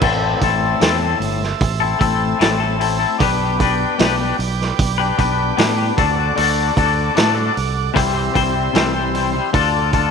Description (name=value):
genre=psychedelic rock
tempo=76 BPM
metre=4/4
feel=straight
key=A minor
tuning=A4 = 440 Hz
part: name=combo organ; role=sustained chords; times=0.0-10.1 s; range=G4 to E6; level=-24 LUFS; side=right 12 dB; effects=lush chorus
part: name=twangy electric guitar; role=riff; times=0.0-10.1 s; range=A2 to C5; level=-18 LUFS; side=left 13 dB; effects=harmonic tremolo
part: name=fingered electric bass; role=bass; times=0.0-10.1 s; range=G1 to A2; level=-22 LUFS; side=right 3 dB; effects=none
part: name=vintage drum kit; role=drums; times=0.0-10.1 s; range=crash cymbal, hi-hat, kick drum, snare drum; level=-20 LUFS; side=right 2 dB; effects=none
room=light reverb, small room ambience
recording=1960s-style stereo with parts hard left and right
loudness=-15 LUFS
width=side -6 dB against mid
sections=0.0-10.1 A section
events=none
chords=0.0 Am; 3.2 G/B; 6.0 D; 8.0 C; 9.5 Dm